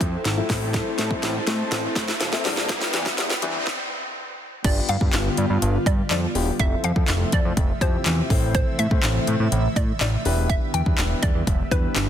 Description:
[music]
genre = dance-pop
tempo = 123 BPM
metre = 4/4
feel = straight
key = A minor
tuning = A4 = 439 Hz
[part]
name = dark baby grand piano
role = accompaniment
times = 0.0-12.1 s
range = F3 to C5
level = -30 LUFS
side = left 6 dB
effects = sidechain pumping
[part]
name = airy breathy pad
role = sustained chords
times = 0.0-12.1 s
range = C3 to A5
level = -30 LUFS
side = right 1 dB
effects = chorus, sidechain pumping
[part]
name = fat analog bass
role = bass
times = 0.0-12.1 s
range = D#1 to A2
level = -24 LUFS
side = equal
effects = sidechain pumping
[part]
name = house drum kit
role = drums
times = 0.0-12.1 s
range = crash cymbal, handclaps, hi-hat, kick drum, snare drum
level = -23 LUFS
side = equal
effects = overdrive
[part]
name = riser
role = sound effects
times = 0.0-3.7 s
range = none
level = -30 LUFS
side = right 1 dB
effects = none
[part]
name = hollow square pluck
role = melody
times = 4.6-11.9 s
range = B4 to G5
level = -30 LUFS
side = equal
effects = chorus, ping-pong delay
[sound]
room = light reverb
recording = dense, heavily limited modern master, high-pass filter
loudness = -20 LUFS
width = side -10 dB against mid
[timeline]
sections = 0.0-4.6 A section; 4.6-12.1 B section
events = build-up 0.0-4.6; drum fill 0.0-3.7; riser 0.0-4.6; filter sweep 0.0-4.6; stop 3.7-4.6; drop 4.6-12.1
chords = 0.5 Am; 2.5 Em7; 4.6 G7; 6.6 Fmaj7; 8.3 Am; 10.3 Em7

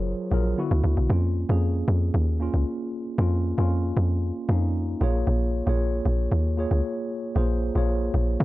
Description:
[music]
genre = amapiano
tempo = 115 BPM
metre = 4/4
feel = straight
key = unclear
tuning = A4 = 440 Hz
[part]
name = mellow tine electric piano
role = accompaniment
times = 0.0-8.4 s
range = D3 to Db5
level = -28 LUFS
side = equal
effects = medium stereo tremolo
[part]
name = deep log drum bass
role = bass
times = 0.0-8.4 s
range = Gb1 to Bb2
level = -22 LUFS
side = equal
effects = none
[sound]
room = digital ambience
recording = dry, gritty hardware recording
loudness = -22 LUFS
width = side -17 dB against mid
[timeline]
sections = 0.0-8.4 A section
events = none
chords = 0.0 Gbmaj9; 0.6 D69; 1.1 Db69; 5.0 Bbm7

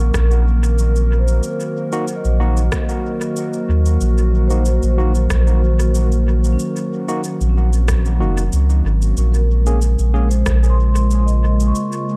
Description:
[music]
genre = ambient dub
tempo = 93 BPM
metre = 4/4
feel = straight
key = unclear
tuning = A4 = 440 Hz
[part]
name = warbly tape-like pad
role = sustained chords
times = 0.0-12.2 s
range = Db3 to Bb4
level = -25 LUFS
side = equal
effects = chorus, built-in reverb
[part]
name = vibraphone with soft mallets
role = arpeggios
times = 0.0-12.2 s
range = C4 to Db6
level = -31 LUFS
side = equal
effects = low-pass filter, analog delay
[part]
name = warm sub bass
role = bass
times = 0.0-11.7 s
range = F1 to Eb2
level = -17 LUFS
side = equal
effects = none
[part]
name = electronic kick drum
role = drums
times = 0.1-10.6 s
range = none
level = -26 LUFS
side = equal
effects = none
[part]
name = electronic rim click and shaker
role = drums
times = 0.1-12.0 s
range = none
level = -32 LUFS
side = equal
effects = dub echo
[part]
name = overdriven tine electric piano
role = stabs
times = 1.9-10.3 s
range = Bb3 to Ab4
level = -31 LUFS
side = equal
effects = dub echo
[sound]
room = little or no reverb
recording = echo-heavy mix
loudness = -17 LUFS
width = mono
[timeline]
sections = 0.0-12.2 A section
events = filter sweep on vibraphone 0.0-12.2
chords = 0.0 Ebm/Bb; 9.2 Bbm7

